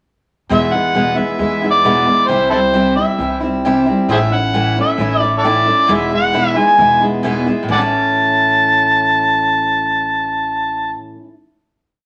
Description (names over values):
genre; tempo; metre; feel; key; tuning
folk rock and heartland rock; 133 BPM; 4/4; straight; A major; A4 = 440 Hz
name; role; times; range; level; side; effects
overdriven harmonica; melody; 0.5-10.9 s; E4 to A5; -16 LUFS; equal; none
picked steel-string acoustic guitar; accompaniment; 0.5-11.3 s; E2 to E4; -20 LUFS; equal; none
upright bass; bass; 0.5-10.9 s; E1 to E2; -28 LUFS; equal; none
room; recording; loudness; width
wet studio reverb, RT60 0.8 s; none; -15 LUFS; mono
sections
0.5-7.7 pre-chorus; 7.7-11.3 final chord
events
none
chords
0.5 E; 2.3 C; 4.1 A; 5.9 E; 7.7 A